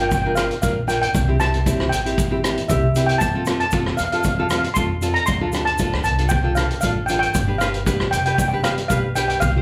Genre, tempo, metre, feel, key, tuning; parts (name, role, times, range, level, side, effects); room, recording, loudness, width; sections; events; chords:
calypso; 116 BPM; 4/4; straight; A4 = 439 Hz
steel pan; melody; 0.0-9.6 s; E5 to C6; -25 LUFS; equal; plate reverb, slapback echo
nylon-string guitar; accompaniment; 0.0-9.6 s; C4 to C5; -27 LUFS; equal; plate reverb, slapback echo
upright bass; bass; 0.0-9.6 s; F1 to F2; -27 LUFS; equal
street-band drum kit; drums; 0.1-9.5 s; hi-hat, kick drum, rim click; -25 LUFS; equal
egg shaker; percussion; 0.1-9.5 s; -37 LUFS; equal
moderate club reverb, RT60 0.6 s; live gig heard through the venue's PA, club reverb; -20 LUFS; mono
0.0-9.6 A section
0.0 Bb6; 1.2 C; 3.2 Fmaj7; 5.3 Dm7; 7.4 G7